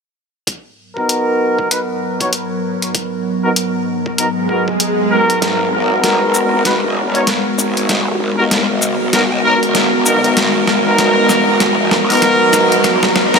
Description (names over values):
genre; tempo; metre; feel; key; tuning
glitch hop; 97 BPM; 4/4; swing 60% on 16ths; G# minor; A4 = 440 Hz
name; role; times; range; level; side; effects
warbly tape-like pad; sustained chords; 0.5-13.4 s; G#2 to A#4; -18 LUFS; equal; chorus, built-in reverb, sidechain pumping
boom bap sampler-style drum kit; drums; 0.5-13.4 s; hi-hat, shaker, snare drum; -17 LUFS; equal; none
electronic kick drum; drums; 0.5-4.8 s; none; -29 LUFS; equal; high-pass filter on kick, high-pass filter on room
bright horn section; stabs; 1.0-13.4 s; B3 to C#5; -16 LUFS; equal; sidechain pumping, low-pass filter, diffuse ambient delay
swell and riser; sound effects; 4.4-13.4 s; none; -24 LUFS; right 2 dB; none
growl bass; bass; 5.4-13.4 s; F#1 to D#2; -21 LUFS; equal; chorus, tube saturation, high-pass filter
room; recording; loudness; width
wet huge ambient reverb, RT60 7.1 s; dreamy mix soaked in reverb; -12 LUFS; side -5 dB against mid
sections
0.5-5.4 A section; 5.4-13.4 B section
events
swell 4.4-5.4; kick drops out 4.8-5.4; build-up 5.4-13.4; drum fill 5.4-13.4; filter sweep on horn section 5.4-13.4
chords
0.5 G#m9